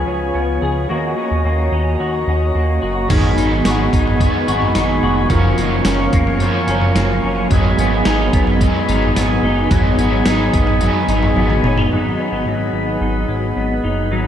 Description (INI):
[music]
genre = dream pop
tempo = 109 BPM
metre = 4/4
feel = straight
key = G# dorian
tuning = A4 = 440 Hz
[part]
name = mellow tonewheel organ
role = sustained chords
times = 0.0-14.3 s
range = E#4 to C#6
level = -21 LUFS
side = left 1 dB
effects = slow rotary speaker, shimmer reverb
[part]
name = semi-hollow electric guitar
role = arpeggios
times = 0.0-14.3 s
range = D#3 to G#4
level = -20 LUFS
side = left 2 dB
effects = ensemble chorus, tape echo, shimmer reverb
[part]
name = chorused synth bass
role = bass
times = 0.0-14.3 s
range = E#1 to D#2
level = -20 LUFS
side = equal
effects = none
[part]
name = overdriven semi-hollow guitar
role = accompaniment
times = 3.1-12.4 s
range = G#2 to A#4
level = -21 LUFS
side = right 3 dB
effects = harmonic tremolo, wide subtle chorus, shimmer reverb
[part]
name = gated 80s digital drum machine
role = drums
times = 3.1-11.9 s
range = crash cymbal, kick drum, snare drum, tambourine, toms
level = -19 LUFS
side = right 1 dB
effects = gated reverb, gated reverb snare
[sound]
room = wet cathedral reverb, RT60 6.6 s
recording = dreamy mix soaked in reverb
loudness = -14 LUFS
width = side -10 dB against mid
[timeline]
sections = 0.0-3.1 A section; 3.1-11.9 B section; 11.9-14.3 C section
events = drum fill 11.4-11.9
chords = 0.0 C#7; 0.9 D#m7; 3.1 G#m7; 5.3 F#maj7; 7.5 G#m7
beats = 0.35 | 0.90 1.45 2.00 2.55 | 3.10 3.65 4.20 4.75 | 5.30 5.86 6.41 6.96 | 7.51 8.06 8.61 9.16 | 9.71 10.26 10.81 11.36 | 11.91 12.46 13.01 13.56 | 14.11